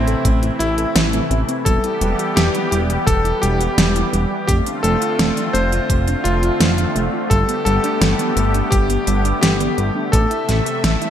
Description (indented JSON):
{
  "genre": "synthwave",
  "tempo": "85 BPM",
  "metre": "4/4",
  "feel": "straight",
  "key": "A minor",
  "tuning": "A4 = 440 Hz",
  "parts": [
    { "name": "clear electric grand piano", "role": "melody", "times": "0.0-11.1 s", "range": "C4 to C5", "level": "-22 LUFS", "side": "left 2 dB", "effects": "ping-pong delay" },
    { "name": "lush unison pad", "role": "sustained chords", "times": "0.0-11.1 s", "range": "C3 to E5", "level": "-23 LUFS", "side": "equal", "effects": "chorus, sidechain pumping" },
    { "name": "soft round pluck", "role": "arpeggios", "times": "0.0-11.1 s", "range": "G3 to C5", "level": "-25 LUFS", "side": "right 3 dB", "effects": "chorus, digital delay" },
    { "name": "chorused synth bass", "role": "bass", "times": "0.0-11.0 s", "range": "E1 to A1", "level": "-20 LUFS", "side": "equal", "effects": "tube saturation" },
    { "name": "pop drum kit", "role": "drums", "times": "0.1-11.1 s", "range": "hi-hat, snare drum", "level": "-20 LUFS", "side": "equal", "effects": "gated reverb" },
    { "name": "electronic kick drum", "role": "drums", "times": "0.2-10.3 s", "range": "none", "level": "-18 LUFS", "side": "equal", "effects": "none" }
  ],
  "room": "moderate lush hall reverb, RT60 1.9 s, digital ambience",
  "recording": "bright 1980s-style digital production",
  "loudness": "-15 LUFS",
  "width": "side -10 dB against mid",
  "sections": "0.0-11.1 A section",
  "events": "none",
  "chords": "0.0 Am; 1.7 Em; 4.5 Dm7/F; 7.3 Gadd9; 10.1 Am"
}